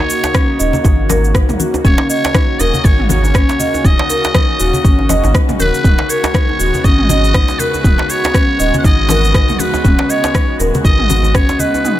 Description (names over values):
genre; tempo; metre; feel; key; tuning
afro house; 120 BPM; 4/4; swing 57% on 16ths; Eb minor; A4 = 440 Hz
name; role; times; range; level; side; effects
trumpet with metal mute; melody; 0.0-12.0 s; Cb5 to Gb5; -19 LUFS; equal; dub echo
warm analog pad; sustained chords; 0.0-12.0 s; Db3 to Gb4; -23 LUFS; left 1 dB; chorus, sidechain pumping
marimba with medium mallets; arpeggios; 0.1-12.0 s; Db4 to Eb5; -18 LUFS; left 1 dB; sidechain pumping, dub echo
deep house drum kit; drums; 0.1-12.0 s; rim click, shaker, toms; -21 LUFS; right 1 dB; overdrive
djembe; percussion; 0.2-11.8 s; none; -22 LUFS; right 2 dB; none
electronic kick drum; drums; 0.3-11.5 s; none; -12 LUFS; equal; none
congas; percussion; 0.3-11.7 s; none; -22 LUFS; left 3 dB; none
round analog bass; bass; 0.6-11.4 s; Eb1 to Ab1; -16 LUFS; equal; sidechain pumping
room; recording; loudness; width
small room reverb; none; -10 LUFS; side -13 dB against mid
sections
0.0-12.0 A section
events
kick drops out 11.8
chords
0.0 Ebm7; 5.8 Db7sus4/Eb